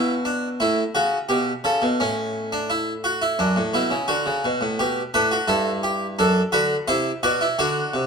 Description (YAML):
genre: classical, baroque-style 4-part fugue for harpsichord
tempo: 86 BPM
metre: 4/4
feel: straight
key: unclear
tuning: A4 = 440 Hz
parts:
  - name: harpsichord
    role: solo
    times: 0.0-8.1 s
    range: F#2 to D5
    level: -20 LUFS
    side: equal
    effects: none
room: wet large studio reverb, RT60 1.4 s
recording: minimal, uncompressed stereo recording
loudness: -19 LUFS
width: side -5 dB against mid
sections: 0.0-8.1 A section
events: none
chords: 0.0 N.C.; 0.6 A; 3.4 D/F#; 4.8 G; 6.2 D/F#